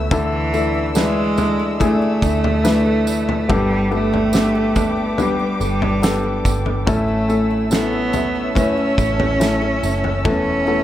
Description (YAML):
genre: pop ballad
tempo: 71 BPM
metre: 4/4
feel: straight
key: A major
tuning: A4 = 440 Hz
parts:
  - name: warm concert grand piano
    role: accompaniment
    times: 0.0-10.8 s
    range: G2 to B4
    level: -22 LUFS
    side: left 3 dB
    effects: tape echo
  - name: muted studio string section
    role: sustained chords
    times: 0.0-10.8 s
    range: B4 to E6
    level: -28 LUFS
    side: left 3 dB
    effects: none
  - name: nylon-string guitar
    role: arpeggios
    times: 0.0-10.8 s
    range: A2 to A4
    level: -29 LUFS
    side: equal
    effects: tape echo
  - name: vintage muted fingered electric bass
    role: bass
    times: 0.0-10.8 s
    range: E1 to D2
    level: -25 LUFS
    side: right 1 dB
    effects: none
  - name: rich cello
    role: melody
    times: 0.1-10.8 s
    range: E3 to C#4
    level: -20 LUFS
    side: right 1 dB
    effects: tape echo
  - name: loose indie drum kit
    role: drums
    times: 0.1-10.4 s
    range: kick drum, snare drum, toms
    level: -22 LUFS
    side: equal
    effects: none
  - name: tambourine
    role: percussion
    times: 0.1-10.0 s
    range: none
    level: -34 LUFS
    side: right 7 dB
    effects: tape echo
room: light reverb, small room ambience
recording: echo-heavy mix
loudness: -16 LUFS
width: side -12 dB against mid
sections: 0.0-10.8 A section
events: none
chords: 0.1 Dsus2; 3.5 Gadd9; 6.9 A; 10.3 Esus4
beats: | 0.11 0.96 1.80 2.65 | 3.49 4.34 5.18 6.03 | 6.87 7.72 8.56 9.41 | 10.25